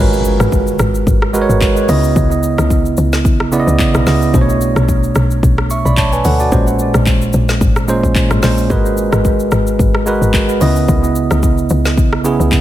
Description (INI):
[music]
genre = amapiano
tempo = 110 BPM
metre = 4/4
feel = swing 55% on 16ths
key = unclear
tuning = A4 = 441 Hz
[part]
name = bell-like tine electric piano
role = accompaniment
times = 0.0-12.6 s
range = A#2 to C#6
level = -14 LUFS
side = right 2 dB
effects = analog delay
[part]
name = woody log drum bass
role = bass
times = 0.0-12.5 s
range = G#1 to D2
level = -16 LUFS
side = left 1 dB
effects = none
[part]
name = impact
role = sound effects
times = 0.0-2.2 s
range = none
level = -22 LUFS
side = left 3 dB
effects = none
[part]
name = deep house drum kit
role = drums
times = 0.1-12.6 s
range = handclaps, hi-hat, kick drum, rim click, shaker, snare drum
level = -16 LUFS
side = left 1 dB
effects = none
[sound]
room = light reverb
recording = echo-heavy mix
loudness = -11 LUFS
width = side -13 dB against mid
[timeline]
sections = 0.0-12.6 A section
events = impact 0.0-2.2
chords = 0.0 G#m9; 1.9 C#m9; 4.3 Bm9; 6.5 A#m9; 8.7 G#m9; 10.6 C#m9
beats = 0.52 1.07 1.61 | 2.16 2.70 3.25 3.79 | 4.34 4.89 5.43 5.98 | 6.52 7.07 7.61 8.16 | 8.70 9.25 9.79 10.34 | 10.89 11.43 11.98 12.52